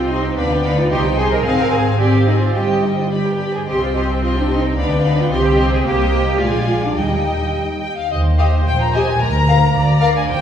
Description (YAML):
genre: quick classical-period movement for string orchestra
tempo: 110 BPM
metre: 2/4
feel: rubato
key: C minor, Eb major from 5.9 s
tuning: A4 = 443 Hz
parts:
  - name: warm symphonic violin section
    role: melody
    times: 0.0-10.4 s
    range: Eb5 to C6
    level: -24 LUFS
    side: left 3 dB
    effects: none
  - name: warm symphonic violin section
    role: second line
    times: 0.0-10.1 s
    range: G4 to Ab5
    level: -23 LUFS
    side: left 1 dB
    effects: none
  - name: rich symphonic viola section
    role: accompaniment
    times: 0.0-10.4 s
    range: G3 to D5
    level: -22 LUFS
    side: equal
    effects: none
  - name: warm symphonic cello section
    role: bass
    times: 0.0-10.4 s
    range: D2 to Bb4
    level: -21 LUFS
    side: right 2 dB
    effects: none
  - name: warm symphonic double bass section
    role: bass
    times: 0.0-10.4 s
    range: G1 to Eb2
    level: -18 LUFS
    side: equal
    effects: none
room: wet scoring stage reverb, RT60 1.6 s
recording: heard from further back in the room, small room ambience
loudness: -14 LUFS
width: side -9 dB against mid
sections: 0.0-8.1 A section; 8.1-10.4 B section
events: none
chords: 0.4 G7/D; 0.9 Cm; 1.5 Fm/Ab; 2.0 Dm7b5/Ab; 2.5 Cm/G; 3.1 G; 3.7 Cm; 4.8 G7/D; 5.3 Cm; 6.4 Bb7; 7.0 Eb; 9.2 Bb/D